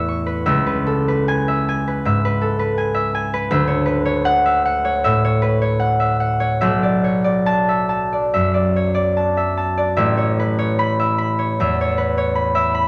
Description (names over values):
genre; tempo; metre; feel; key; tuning
classical, solo harp piece; 70-83 BPM; 4/4; rubato; A major; A4 = 440 Hz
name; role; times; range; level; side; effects
concert harp; solo; 0.0-12.9 s; A1 to C#6; -18 LUFS; equal; none
room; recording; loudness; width
light reverb; none; -19 LUFS; mono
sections
0.0-12.9 A section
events
none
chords
0.5 C#m7; 3.5 Dmaj9; 6.6 Bm11; 10.0 Aadd9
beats
| 0.46 1.25 2.03 2.76 | 3.51 4.26 5.03 5.82 | 6.64 7.49 8.34 9.16 | 9.98 10.80 11.60 12.38